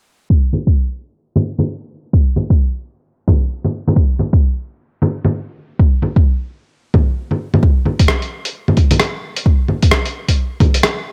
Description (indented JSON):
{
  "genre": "future garage",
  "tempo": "131 BPM",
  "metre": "4/4",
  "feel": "swing 61% on 16ths",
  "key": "none",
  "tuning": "none",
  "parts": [
    { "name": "electronic kick drum", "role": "drums", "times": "0.3-10.7 s", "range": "none", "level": "-15 LUFS", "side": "equal", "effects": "overdrive" },
    { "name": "lo-fi sampler-style drum kit", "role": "drums", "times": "0.5-10.9 s", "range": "bongos, hi-hat, rim click", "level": "-18 LUFS", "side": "equal", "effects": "none" }
  ],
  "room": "little or no reverb",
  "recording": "low-pass filter",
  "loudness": "-16 LUFS",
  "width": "mono",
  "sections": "0.3-7.6 A section; 7.6-11.1 B section",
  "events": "filter sweep 0.3-7.6",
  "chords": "none"
}